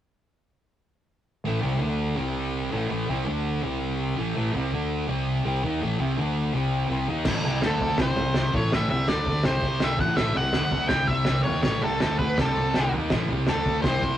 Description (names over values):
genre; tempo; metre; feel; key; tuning
garage rock duo or trio; 164 BPM; 4/4; straight; unclear; A4 = 444 Hz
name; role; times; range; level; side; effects
thick fuzz guitar; riff; 1.4-14.2 s; A2 to D#4; -27 LUFS; equal; distortion
fuzz fingered electric bass; bass; 1.5-14.2 s; A1 to D#2; -29 LUFS; equal; overdrive
cloth-damped thuddy drum kit; drums; 7.2-14.1 s; crash cymbal, kick drum, snare drum, toms; -26 LUFS; equal; none
octave-fuzz lead guitar; melody; 7.7-14.2 s; A4 to G5; -26 LUFS; equal; distortion
room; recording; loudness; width
moderate booth ambience, RT60 0.2 s; rough rehearsal-room recording, warm saturation; -22 LUFS; side -11 dB against mid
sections
1.4-7.3 A section; 7.3-14.2 B section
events
none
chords
1.4 A5; 1.8 D5; 2.2 C5; 2.7 A5; 3.3 D5; 3.6 C5; 4.2 A5; 4.7 D5; 5.1 C5; 5.5 A5; 6.2 D5; 6.5 C5; 6.9 Cm7; 7.3 A5; 7.6 D5; 8.0 C5; 8.5 A5; 9.1 D5; 9.5 C5; 10.0 A5; 10.6 D5; 10.9 C5; 11.3 A5; 12.0 D5; 12.4 C5; 12.8 A5; 13.5 D5